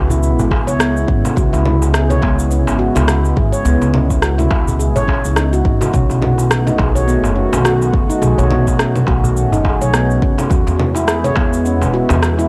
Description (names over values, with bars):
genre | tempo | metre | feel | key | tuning
organic downtempo | 105 BPM | 4/4 | swing 58% on 16ths | C# minor | A4 = 440 Hz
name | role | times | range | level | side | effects
warbly tape-like pad | sustained chords | 0.0-12.5 s | C#3 to F#4 | -23 LUFS | equal | chorus, built-in reverb, sidechain pumping
handpan | arpeggios | 0.0-12.5 s | B3 to C#5 | -22 LUFS | equal | analog delay
upright bass | bass | 0.0-12.5 s | E1 to E2 | -19 LUFS | equal | sidechain pumping
electronic cabasa, rim click and congas | drums | 0.1-12.5 s | none | -22 LUFS | equal | none
darbuka | percussion | 0.1-12.5 s | none | -26 LUFS | equal | none
electronic kick drum | drums | 0.5-11.5 s | none | -20 LUFS | equal | none
room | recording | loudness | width
digital ambience | dry, gritty hardware recording, cassette tape | -15 LUFS | mono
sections
0.0-12.5 A section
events
none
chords
0.0 C#m7; 5.9 B7; 10.5 E